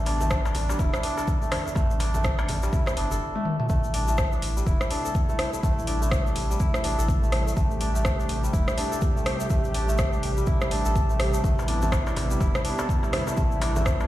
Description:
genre	afro house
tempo	124 BPM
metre	4/4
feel	swing 60% on 16ths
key	A minor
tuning	A4 = 440 Hz
part	warm analog pad	sustained chords	0.0-14.1 s	C3 to G4	-32 LUFS	right 1 dB	chorus, sidechain pumping
part	kora	arpeggios	0.0-14.1 s	G3 to A4	-30 LUFS	equal	sidechain pumping, tape echo
part	round analog bass	bass	0.0-14.1 s	E1 to A1	-27 LUFS	equal	tube saturation, sidechain pumping
part	afro-pop drum kit	drums	0.1-14.0 s	hi-hat, rim click, toms	-31 LUFS	equal	overdrive
part	congas	percussion	0.1-3.2, 11.4-14.0 s	none	-36 LUFS	equal	none
part	darbuka	percussion	0.1-3.0, 11.6-14.1 s	none	-36 LUFS	left 2 dB	none
part	egg shaker	percussion	0.2-14.1 s	none	-41 LUFS	left 3 dB	none
part	electronic kick drum	drums	0.3-14.0 s	none	-25 LUFS	equal	overdrive
room	light reverb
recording	played on a big sound system in a bare room, large studio reverb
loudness	-22 LUFS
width	side -14 dB against mid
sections	0.0-3.7 A section; 3.7-14.1 B section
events	drum fill 3.3-3.7; drop 3.7-14.1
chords	0.0 Am7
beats	0.31 0.79 1.28 | 1.76 2.24 2.73 3.21 | 3.70 4.18 4.66 5.15 | 5.63 6.12 6.60 7.08 | 7.57 8.05 8.54 9.02 | 9.50 9.99 10.47 10.95 | 11.44 11.92 12.41 12.89 | 13.37 13.86

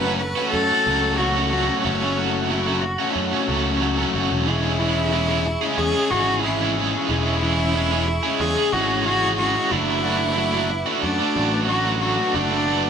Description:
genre	post-rock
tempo	92 BPM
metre	4/4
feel	straight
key	unclear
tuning	A4 = 440 Hz
part	warm cello	melody	0.0-12.9 s	C#4 to B4	-24 LUFS	equal	none
part	brassy analog pad	sustained chords	0.0-12.9 s	G#4 to D6	-34 LUFS	equal	chorus, tremolo
part	biting overdriven guitar	riff	0.0-12.9 s	E3 to G#4	-25 LUFS	left 6 dB	none
part	cranked stack guitar	riff	0.0-12.9 s	E3 to G#4	-24 LUFS	right 8 dB	overdrive, tremolo
part	overdriven picked electric bass	bass	0.0-12.9 s	E1 to F#2	-26 LUFS	equal	none
room	wet studio reverb, RT60 0.6 s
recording	band playing live in one room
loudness	-18 LUFS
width	side -7 dB against mid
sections	0.0-12.9 A section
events	none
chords	0.0 F#m; 4.5 C#m/E; 9.7 D6/F#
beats	0.54 1.19 | 1.85 2.50 3.16 3.82 | 4.47 5.13 5.78 6.44 | 7.09 7.75 8.40 9.06 | 9.72 10.37 11.03 11.69 | 12.34

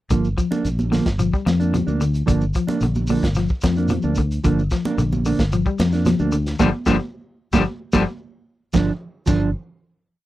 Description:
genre	afrobeat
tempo	111 BPM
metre	4/4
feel	straight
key	G minor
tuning	A4 = 440 Hz
part	electric guitar at the edge of break-up	arpeggios	0.1-9.4 s	G2 to G3	-23 LUFS	left 5 dB	none
part	mellow electric guitar	stabs	0.1-9.5 s	F3 to D4	-22 LUFS	right 5 dB	none
part	fingered electric bass	bass	0.1-9.5 s	G1 to F2	-22 LUFS	equal	none
part	crunchy breakbeat drum kit	drums	0.1-9.4 s	crash cymbal, hi-hat, kick drum, snare drum	-23 LUFS	equal	none
part	congas	percussion	0.1-9.4 s	none	-26 LUFS	right 3 dB	none
part	shekere	percussion	0.1-9.4 s	none	-29 LUFS	right 1 dB	none
room	little or no reverb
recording	dry, close 1970s-style studio recording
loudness	-18 LUFS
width	side -15 dB against mid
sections	0.1-8.7 groove; 8.7-10.3 final chord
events	band accent 6.6-8.7; drum fill 8.2-8.7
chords	0.1 Gm7; 8.7 G7(no3)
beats	| 0.10 0.65 1.19 1.74 | 2.28 2.82 3.36 3.90 | 4.45 4.99 5.52 6.06 | 6.60 7.14 7.67 8.21 | 8.74 9.28

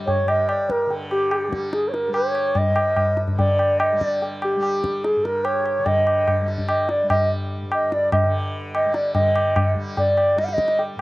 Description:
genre	indian classical, Hindustani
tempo	146 BPM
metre	4/4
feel	straight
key	G raga todi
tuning	A4 = 440 Hz
part	tanpura	drone	0.0-11.0 s	G2 to G3	-33 LUFS	equal	cassette tape
part	reedy bansuri	melody	0.1-10.8 s	G4 to F#5	-20 LUFS	equal	cassette tape
part	tabla	percussion	0.1-11.0 s	none	-23 LUFS	left 1 dB	none
room	light reverb, small room ambience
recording	home recording on cassette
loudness	-18 LUFS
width	side -19 dB against mid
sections	0.0-9.1 A section; 9.1-11.0 B section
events	none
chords	none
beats	0.07 0.48 | 0.90 1.31 1.73 2.14 | 2.56 2.97 3.38 3.80 | 4.21 4.62 5.04 5.45 | 5.86 6.27 6.68 7.09 | 7.51 7.92 8.33 8.74 | 9.15 9.56 9.97 10.38 | 10.78

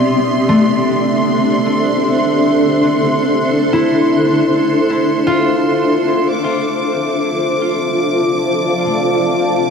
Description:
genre	ambient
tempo	free time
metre	none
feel	none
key	unclear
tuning	A4 = 440 Hz
part	granular cloud pad	sustained chords	0.0-9.7 s	B3 to A5	-14 LUFS	equal	built-in reverb
part	concert harp	arpeggios	0.0-9.7 s	A3 to D5	-18 LUFS	left 1 dB	ping-pong delay
part	clear studio violin section	texture	0.0-9.7 s	C6 to D6	-22 LUFS	left 1 dB	none
part	bowed-like drone	drone	7.2-9.7 s	C3 to C4	-34 LUFS	right 2 dB	built-in reverb
room	wet huge ambient reverb, RT60 7.9 s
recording	dreamy mix soaked in reverb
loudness	-12 LUFS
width	side -6 dB against mid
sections	0.0-6.3 A section; 6.3-9.7 B section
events	none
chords	0.1 Dm9; 6.3 F6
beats	free time

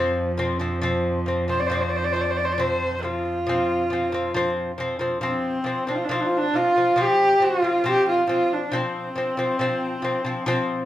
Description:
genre	mongolian traditional, Mongolian folk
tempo	68 BPM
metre	4/4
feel	straight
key	unclear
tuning	A4 = 440 Hz
part	lute	arpeggios	0.0-10.8 s	F3 to C4	-25 LUFS	left 2 dB	none
part	rich cello	drone	0.0-5.3 s	F2	-29 LUFS	right 1 dB	none
part	clear horsehead fiddle	melody	1.5-10.9 s	C4 to D5	-22 LUFS	equal	none
room	wet large studio reverb, RT60 0.9 s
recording	band playing live in one room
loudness	-20 LUFS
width	side -13 dB against mid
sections	0.0-5.2 A section; 5.2-10.9 B section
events	none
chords	0.0 F5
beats	0.84 | 1.72 2.60 3.48 4.35 | 5.23 6.11 6.98 7.86 | 8.73 9.61 10.48

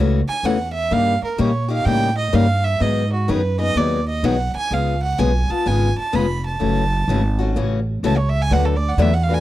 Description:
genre	acoustic string swing (jazz manouche)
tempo	126 BPM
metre	4/4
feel	swing 65% on 8ths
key	unclear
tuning	A4 = 440 Hz
part	picked acoustic archtop guitar	accompaniment	0.0-9.4 s	C#3 to B4	-22 LUFS	left 5 dB	none
part	upright bass	bass	0.0-9.4 s	E#1 to A#2	-20 LUFS	right 1 dB	none
part	warm violin	melody	0.3-9.4 s	F#4 to B5	-23 LUFS	right 4 dB	none
room	studio reverb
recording	dry, close 1970s-style studio recording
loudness	-17 LUFS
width	side -14 dB against mid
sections	0.0-9.4 A section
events	violin solo 0.0-9.4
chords	0.0 F#m7; 0.9 D#7/G; 2.8 G#m7; 4.7 C#7; 6.6 F#m7; 8.5 D6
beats	0.44 | 0.92 1.39 1.86 2.34 | 2.81 3.29 3.76 4.24 | 4.71 5.19 5.66 6.14 | 6.61 7.09 7.56 8.04 | 8.51 8.99

